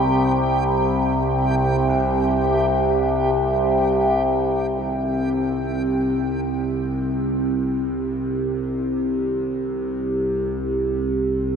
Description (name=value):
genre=dark ambient drone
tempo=free time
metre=none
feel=none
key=unclear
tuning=A4 = 442 Hz
part: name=dark analog pad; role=sustained chords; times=0.0-4.8 s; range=C3 to Bb4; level=-30 LUFS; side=left 1 dB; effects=none
part: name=overtone-sweeping drone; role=drone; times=0.0-11.6 s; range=C2 to C3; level=-20 LUFS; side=equal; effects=chorus, built-in reverb
part: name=backwards swelling texture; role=texture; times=0.0-4.8 s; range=G4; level=-28 LUFS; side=right 5 dB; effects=built-in reverb
part: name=bright concert grand piano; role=arpeggios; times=1.9-11.6 s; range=C2 to Eb3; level=-43 LUFS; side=right 1 dB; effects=none
room=wet huge ambient reverb, RT60 8.8 s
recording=dreamy mix soaked in reverb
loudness=-19 LUFS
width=side -6 dB against mid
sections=0.0-4.8 A section; 4.8-11.6 B section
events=none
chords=0.0 Gm/C; 4.8 Cm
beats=free time